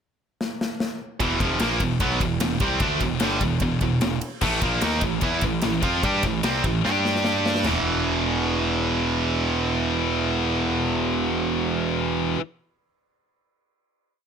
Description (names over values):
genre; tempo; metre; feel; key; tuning
heavy metal; 148 BPM; 4/4; straight; E minor; A4 = 440 Hz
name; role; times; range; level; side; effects
big rock drum kit; drums; 0.4-7.7 s; crash cymbal, kick drum, ride cymbal, snare drum, toms; -27 LUFS; left 1 dB; none
heavy high-gain guitar; riff; 1.2-12.4 s; E2 to G4; -26 LUFS; left 17 dB; distortion
tight distorted guitar; riff; 1.2-12.4 s; E2 to G4; -24 LUFS; right 9 dB; distortion
fuzz picked electric bass; bass; 1.2-12.4 s; E1 to G2; -28 LUFS; left 1 dB; overdrive
room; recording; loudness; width
little or no reverb; none; -21 LUFS; side -7 dB against mid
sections
0.0-1.2 pickup bar; 1.2-7.7 riff; 7.7-10.9 final chord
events
drum fill 0.4-1.2, 6.8-7.7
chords
0.0 N.C.; 1.2 Em; 4.4 A5; 6.8 G5; 7.7 E5